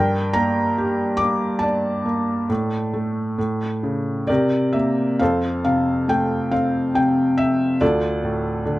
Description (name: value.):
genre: classical, lyrical solo piano.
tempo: 65-72 BPM.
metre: 3/4.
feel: rubato.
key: F major from 5.2 s.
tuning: A4 = 440 Hz.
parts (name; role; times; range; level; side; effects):
felt-muted upright piano; solo; 0.0-8.8 s; D2 to D6; -18 LUFS; equal; none.
room: moderate studio reverb, RT60 0.5 s.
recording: nothing above 10.4 kHz.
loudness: -18 LUFS.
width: side -17 dB against mid.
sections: 0.0-5.2 A section; 5.2-8.8 B section.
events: none.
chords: 0.0 Gmadd9; 2.5 D5/A; 3.4 A; 4.3 C7; 5.2 F; 7.8 Dm.